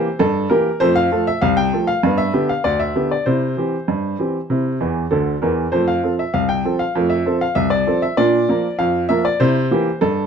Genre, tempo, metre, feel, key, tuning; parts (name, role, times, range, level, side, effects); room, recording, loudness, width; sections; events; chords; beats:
ragtime piano; 98 BPM; 2/4; straight; F major; A4 = 440 Hz
clear upright piano; solo; 0.0-10.3 s; C2 to G5; -16 LUFS; equal
moderate studio reverb, RT60 0.6 s; dark, warm production; -16 LUFS; side -7 dB against mid
0.0-10.3 A section
upright piano fill 4.8-5.7
0.0 C7; 0.8 F; 2.0 G; 3.3 C; 5.7 F; 8.2 Bb; 9.4 C7
0.21 | 0.82 1.43 | 2.04 2.65 | 3.27 3.89 | 4.50 5.12 | 5.73 6.35 | 6.96 7.57 | 8.18 8.79 | 9.40 10.01